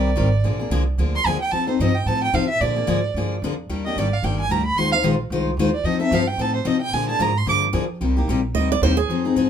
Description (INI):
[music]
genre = acoustic string swing (jazz manouche)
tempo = 222 BPM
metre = 4/4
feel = swing 57% on 8ths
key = unclear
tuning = A4 = 440 Hz
[part]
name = warm violin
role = melody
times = 0.0-7.6 s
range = C5 to D6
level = -23 LUFS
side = right 5 dB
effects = none
[part]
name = picked steel-string acoustic guitar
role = accompaniment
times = 0.0-9.5 s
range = C3 to C5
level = -22 LUFS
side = left 4 dB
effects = none
[part]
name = upright bass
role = bass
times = 0.0-9.5 s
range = G1 to C3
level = -24 LUFS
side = right 1 dB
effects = none
[part]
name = picked steel-string acoustic guitar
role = second line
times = 8.5-9.2 s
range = Ab4 to Eb5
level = -22 LUFS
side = right 10 dB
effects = none
[sound]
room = light reverb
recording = minimal, uncompressed stereo recording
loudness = -18 LUFS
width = side -8 dB against mid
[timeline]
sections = 0.0-8.0 A section; 8.0-9.5 A section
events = violin solo 0.0-8.0; steel-string acoustic guitar solo 8.0-9.5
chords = 0.4 Bb7; 1.5 F7; 2.6 Bb7; 3.7 Ebmaj7; 4.8 Ab69; 5.8 F7; 6.9 Bb7; 8.0 Cm7